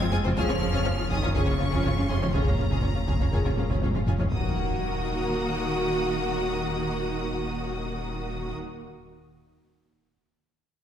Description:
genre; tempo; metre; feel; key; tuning
cinematic, hybrid orchestral and electronic film score; 122 BPM; 4/4; straight; Eb minor; A4 = 441 Hz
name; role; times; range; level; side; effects
clear studio violin section; melody; 0.0-8.5 s; Bb5 to Ab6; -37 LUFS; left 2 dB; none
rich studio violin section; second line; 0.0-8.6 s; C4 to Ab5; -35 LUFS; left 4 dB; none
clear symphonic viola section; accompaniment; 0.0-8.5 s; Bb3 to Gb4; -32 LUFS; right 1 dB; none
woody wave-folded pluck; arpeggios; 0.0-4.3 s; Db3 to C4; -35 LUFS; right 1 dB; none
round analog bass; riff; 0.0-4.3 s; F2 to F3; -32 LUFS; right 1 dB; none
dark symphonic cello section; bass; 0.0-8.5 s; Bb2 to Ab3; -33 LUFS; right 1 dB; none
rich symphonic double bass section; bass; 0.0-8.5 s; Eb2 to F2; -33 LUFS; right 1 dB; none
saturated sub bass; bass; 0.0-8.5 s; Eb1 to F1; -35 LUFS; equal; none
taiko ensemble; drums; 0.0-4.4 s; none; -30 LUFS; left 1 dB; none
felt-muted upright piano; texture; 0.0-4.3 s; Ab3 to C5; -41 LUFS; left 3 dB; none
mellow French horn section; sustained chords; 0.4-8.5 s; Bb3 to Ab4; -35 LUFS; left 1 dB; none
impact; sound effects; 4.3-6.3 s; none; -34 LUFS; left 1 dB; none
room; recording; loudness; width
wet scoring stage reverb, RT60 1.8 s; heard from further back in the room; -24 LUFS; side -9 dB against mid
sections
0.0-4.3 A section; 4.3-8.3 B section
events
drum fill 3.8-4.3; impact 4.3-6.3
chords
0.4 Db6/F; 4.3 Ebm

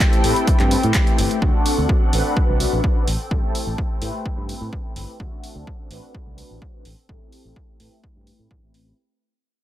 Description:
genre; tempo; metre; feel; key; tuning
filtered disco house; 127 BPM; 4/4; straight; A dorian; A4 = 440 Hz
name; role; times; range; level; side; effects
mellow synth brass; accompaniment; 0.0-9.0 s; A3 to B4; -24 LUFS; left 1 dB; chorus, phaser, sidechain pumping, low-pass filter
bright symphonic string section; sustained chords; 0.0-9.0 s; C4 to G5; -31 LUFS; left 1 dB; vintage 12-bit sampler grit, sidechain pumping, low-pass filter
direct-recorded clean electric guitar; riff; 0.0-1.4 s; E3 to G4; -29 LUFS; equal; sidechain pumping, low-pass filter
electronic kick drum; drums; 0.0-8.6 s; none; -20 LUFS; equal; overdrive
punchy analog drum machine; drums; 0.0-8.8 s; handclaps, hi-hat; -26 LUFS; right 1 dB; overdrive, sidechain pumping on hats
modern bright fingered electric bass; bass; 0.2-8.9 s; G1 to A2; -24 LUFS; equal; sidechain pumping, low-pass filter
room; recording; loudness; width
little or no reverb; none; -17 LUFS; side -13 dB against mid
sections
0.0-9.0 A section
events
fade-out 0.0-9.0; filter sweep 0.0-9.0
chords
0.0 Am7; 1.4 D7; 3.1 Am7; 5.2 D7; 6.9 Am7

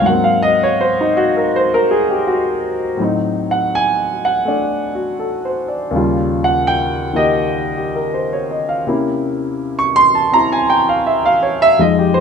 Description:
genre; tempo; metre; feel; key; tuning
solo jazz; 82 BPM; 4/4; swing 66% on 8ths; unclear; A4 = 440 Hz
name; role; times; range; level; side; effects
warm grand piano; solo; 0.0-12.2 s; Eb2 to Db6; -14 LUFS; equal; none
room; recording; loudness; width
moderate large studio reverb, RT60 1.2 s; minimal, uncompressed stereo recording; -14 LUFS; side -6 dB against mid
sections
0.0-12.2 A section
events
grand piano solo 0.0-12.2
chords
0.1 Ab9; 3.0 Adim7; 5.9 Eb9; 8.9 C7b9

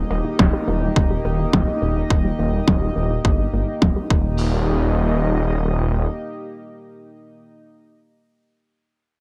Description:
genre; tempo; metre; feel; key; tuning
synthwave; 105 BPM; 4/4; straight; Eb major; A4 = 439 Hz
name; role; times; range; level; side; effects
chorused pulse-width pad; sustained chords; 0.0-7.4 s; Bb3 to Eb5; -28 LUFS; equal; none
analog pluck; arpeggios; 0.0-4.6 s; Eb3 to Eb4; -32 LUFS; equal; none
detuned saw bass; bass; 0.0-6.1 s; Eb1 to G1; -23 LUFS; equal; chorus, tube saturation
pop drum kit; drums; 0.1-4.2 s; crash cymbal, hi-hat, snare drum; -24 LUFS; equal; overdrive, low-pass filter on hats, low-pass filter on snare, low-pass filter on cymbals, low-pass filter on room, gated reverb
electronic kick drum; drums; 0.4-4.2 s; none; -21 LUFS; equal; overdrive
room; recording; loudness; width
light reverb, digital ambience; bright 1980s-style digital production; -20 LUFS; mono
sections
0.0-4.4 A section; 4.4-6.7 B section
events
filter sweep on drum 0.0-4.4; filter sweep on detuned saw bass 0.0-4.4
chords
0.0 Eb

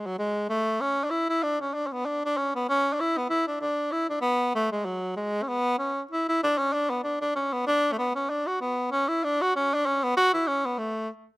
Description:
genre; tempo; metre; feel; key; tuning
celtic folk; 192 BPM; 4/4; swing 57% on 8ths; unclear; A4 = 440 Hz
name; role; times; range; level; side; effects
warm tenor saxophone; solo; 0.0-11.1 s; F#3 to F#4; -24 LUFS; equal; slapback echo
room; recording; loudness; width
little or no reverb; recorded outdoors, with no room sound; -24 LUFS; side -20 dB against mid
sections
0.0-8.9 A section; 8.9-11.4 B section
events
none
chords
none

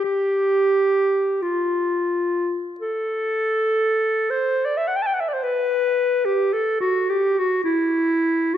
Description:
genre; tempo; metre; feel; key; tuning
classical, free, expressive piece for unaccompanied clarinet; 33-55 BPM; 3/4; rubato; unclear; A4 = 440 Hz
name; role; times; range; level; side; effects
warm clarinet; solo; 0.0-8.6 s; E4 to A5; -19 LUFS; equal; none
room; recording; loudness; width
moderate concert hall reverb, RT60 2.4 s; minimal, uncompressed stereo recording; -19 LUFS; side -10 dB against mid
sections
0.0-4.3 A section; 4.3-8.6 B section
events
none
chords
none

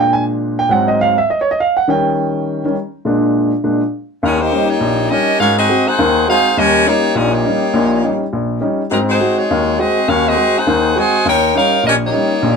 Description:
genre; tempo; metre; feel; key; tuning
jazz; 205 BPM; 4/4; swing 61% on 8ths; Eb major from 4.2 s; A4 = 443 Hz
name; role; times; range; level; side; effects
warm baby grand piano; accompaniment; 0.0-12.6 s; Bb1 to Ab5; -15 LUFS; equal; none
bright saxophone section; melody; 4.2-12.6 s; Gb3 to Ab5; -14 LUFS; equal; none
room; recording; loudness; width
moderate small room reverb, RT60 0.5 s; band playing live in one room; -12 LUFS; side -5 dB against mid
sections
0.0-4.2 A section; 4.2-12.6 B section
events
grand piano solo 0.0-4.2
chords
0.0 Bb7; 0.7 Ab7; 1.9 Eb7; 3.0 Bb7; 4.2 Eb7; 5.4 Ab7; 6.6 Eb7; 8.9 Ab7; 11.3 Eb7

